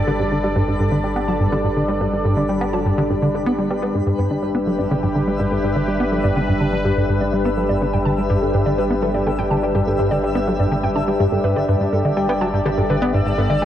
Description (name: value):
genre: ambient, sequencer-driven space music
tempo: 124 BPM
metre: 4/4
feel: straight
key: G major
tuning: A4 = 444 Hz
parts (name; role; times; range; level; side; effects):
- sweeping resonant pad; sustained chords; 0.0-13.7 s; G3 to D5; -21 LUFS; left 1 dB; chorus
- plucky analog bass; riff; 0.0-13.7 s; G2 to B3; -20 LUFS; equal; wide subtle chorus, cassette tape, ping-pong delay
- warm sub bass; bass; 0.0-13.7 s; G1; -29 LUFS; equal; none
- twinkling granular texture; texture; 0.0-13.7 s; B4 to E5; -32 LUFS; left 1 dB; built-in reverb
- warbly dusty pluck; arpeggios; 0.1-13.7 s; G4 to A5; -27 LUFS; equal; chorus, auto-pan, ping-pong delay
room: wet concert hall reverb, RT60 2.3 s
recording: worn, warbling old tape, cassette tape, warbly pitch drift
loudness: -17 LUFS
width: side -11 dB against mid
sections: 0.0-13.7 A section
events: fade-in on synth arpeggio sound 0.0-13.7; fade-in on synth texture 0.0-13.7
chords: 0.0 Gadd9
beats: | 0.07 0.56 1.04 1.52 | 2.01 2.49 2.98 3.46 | 3.94 4.43 4.91 5.39 | 5.88 6.36 6.85 7.33 | 7.81 8.30 8.78 9.27 | 9.75 10.23 10.72 11.20 | 11.69 12.17 12.65 13.14 | 13.62